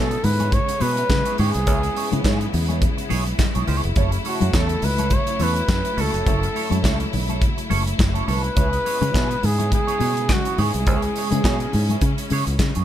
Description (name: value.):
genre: disco.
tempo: 104 BPM.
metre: 4/4.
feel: swing 56% on 16ths.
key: unclear.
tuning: A4 = 440 Hz.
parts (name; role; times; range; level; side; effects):
breathy flugelhorn; melody; 0.0-12.3 s; F#4 to C#5; -25 LUFS; equal; none.
clean electric guitar; accompaniment; 0.0-12.8 s; B3 to C#5; -30 LUFS; right 8 dB; wah.
clear studio string section; sustained chords; 0.0-12.8 s; C#3 to E4; -29 LUFS; left 1 dB; none.
fingered electric bass; bass; 0.0-12.8 s; E#1 to C#3; -22 LUFS; equal; none.
modern studio drum kit; drums; 0.1-12.8 s; handclaps, hi-hat, kick drum, snare drum; -23 LUFS; equal; none.
congas; percussion; 0.2-12.7 s; none; -30 LUFS; left 5 dB; none.
room: little or no reverb.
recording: none.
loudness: -18 LUFS.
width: side -11 dB against mid.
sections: 0.0-12.8 A section.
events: none.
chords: 0.0 C#m7; 4.0 F#m7; 8.6 C#m7.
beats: 0.52 1.10 | 1.67 2.25 2.82 3.39 | 3.97 4.54 5.12 5.69 | 6.27 6.84 7.42 7.99 | 8.57 9.14 9.72 10.29 | 10.87 11.44 12.02 12.59.